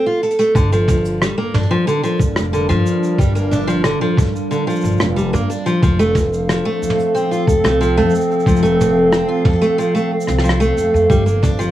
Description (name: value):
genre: folktronica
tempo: 91 BPM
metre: 4/4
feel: straight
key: unclear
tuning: A4 = 440 Hz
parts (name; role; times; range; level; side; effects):
- picked steel-string acoustic guitar; arpeggios; 0.0-11.7 s; D3 to A4; -17 LUFS; equal; tape echo
- soft brush drum kit; drums; 0.2-11.7 s; hi-hat, rim click, shaker, toms; -22 LUFS; equal; none
- warbly tape-like pad; sustained chords; 1.4-11.7 s; F3 to F5; -22 LUFS; equal; chorus, built-in reverb
- upright bass; bass; 0.6-11.7 s; F1 to G2; -19 LUFS; equal; none
- electronic kick drum; drums; 0.6-11.6 s; none; -17 LUFS; equal; none
room: moderate studio reverb, RT60 0.5 s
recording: vinyl crackle, small room ambience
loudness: -13 LUFS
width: side -13 dB against mid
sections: 0.6-11.7 A section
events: break 0.0-0.6; drum fill 0.2-0.6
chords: 0.0 F; 0.6 Gm7; 5.8 F; 11.1 Gm7